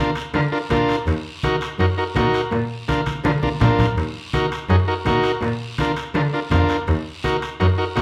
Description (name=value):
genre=latin, cumbia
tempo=165 BPM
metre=4/4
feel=straight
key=Eb harmonic minor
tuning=A4 = 440 Hz
part: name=overdriven combo organ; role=accompaniment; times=0.0-8.0 s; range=D4 to Bb4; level=-24 LUFS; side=equal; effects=none
part: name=guiro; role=percussion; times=0.2-8.0 s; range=none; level=-38 LUFS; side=equal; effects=none
part: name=timbales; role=percussion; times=0.2-8.0 s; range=none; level=-34 LUFS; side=equal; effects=none
part: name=warm cello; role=bass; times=0.3-8.0 s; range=Eb2 to D3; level=-24 LUFS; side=equal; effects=none
part: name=congas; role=percussion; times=0.3-8.0 s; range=none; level=-26 LUFS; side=equal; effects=none
room=moderate large studio reverb, RT60 0.9 s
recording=band playing live in one room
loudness=-21 LUFS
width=mono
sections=0.0-8.0 A section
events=drum fill 3.1-4.0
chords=0.0 Bb; 1.1 Ebm; 2.5 Bb; 4.0 Ebm; 5.4 Bb; 6.9 Ebm